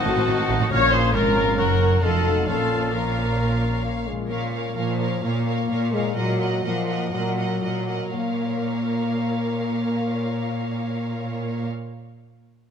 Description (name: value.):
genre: classical, dramatic, fast romantic movement for symphony orchestra.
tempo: 115-140 BPM.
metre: 4/4.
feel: straight.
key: Bb minor.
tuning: A4 = 438 Hz.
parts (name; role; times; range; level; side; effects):
dark symphonic violin section; melody; 0.0-11.7 s; F5 to A5; -35 LUFS; left 3 dB; none.
hollow small flute group; second line; 0.0-3.8 s; F#5 to Db6; -30 LUFS; left 2 dB; none.
warm oboe; second line; 0.0-3.8 s; Eb4 to Bb4; -30 LUFS; right 3 dB; none.
warm symphonic violin section; second line; 0.0-11.7 s; F#4 to F5; -34 LUFS; right 1 dB; none.
rich chamber viola section; accompaniment; 0.0-11.7 s; F#4 to Db5; -27 LUFS; left 1 dB; none.
mellow French horn section; sustained chords; 0.0-11.7 s; Eb3 to Eb4; -27 LUFS; left 3 dB; none.
concert harp; arpeggios; 0.0-12.0 s; F2 to F5; -32 LUFS; left 9 dB; none.
rich symphonic cello section; bass; 0.1-11.7 s; F2 to Bb2; -28 LUFS; right 4 dB; none.
rich symphonic double bass section; bass; 0.1-4.1 s; F1 to Bb1; -26 LUFS; right 3 dB; none.
timpani; percussion; 0.7-1.3 s; none; barely audible; none; none.
room: moderate scoring stage reverb, RT60 1.7 s.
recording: none.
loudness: -21 LUFS.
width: side -7 dB against mid.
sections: 0.0-4.3 A section; 4.3-8.1 B section; 8.1-12.1 C section.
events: slowing down 3.4-8.1.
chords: 0.0 Adim7; 0.7 Bbm; 1.6 Gb; 2.0 F7b9; 2.5 Bbm; 6.2 Ebm/Bb; 8.1 Bbm.